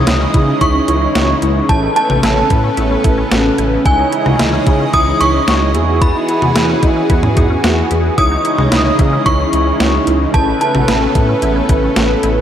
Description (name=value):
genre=synth-pop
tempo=111 BPM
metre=4/4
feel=straight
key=unclear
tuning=A4 = 439 Hz
part: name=synth chime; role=melody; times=0.0-12.2 s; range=G#5 to D#6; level=-18 LUFS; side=right 1 dB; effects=ensemble chorus, slapback echo
part: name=mellow synth brass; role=accompaniment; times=0.0-12.4 s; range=C#4 to C#5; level=-18 LUFS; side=equal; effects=chorus, slapback echo
part: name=lush unison pad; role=sustained chords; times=0.0-12.4 s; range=C#3 to D#5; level=-20 LUFS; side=right 1 dB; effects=chorus
part: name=smooth gliding synth bass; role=bass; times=0.0-12.4 s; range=A1 to E3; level=-18 LUFS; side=equal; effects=none
part: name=resonant blip pluck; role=arpeggios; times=0.1-12.4 s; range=C#4 to F#4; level=-22 LUFS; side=equal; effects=phaser, slapback echo
part: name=clean 12-bit digital drum machine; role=drums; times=0.1-12.4 s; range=hi-hat, kick drum, snare drum, toms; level=-16 LUFS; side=equal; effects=overdrive
room=wet lush hall reverb, RT60 2.2 s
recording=big arena sound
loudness=-11 LUFS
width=side -10 dB against mid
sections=0.0-12.4 A section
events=none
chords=0.0 C#madd9; 1.7 Aadd9; 3.9 C#madd9; 5.7 Eadd9; 8.2 C#madd9; 10.3 Aadd9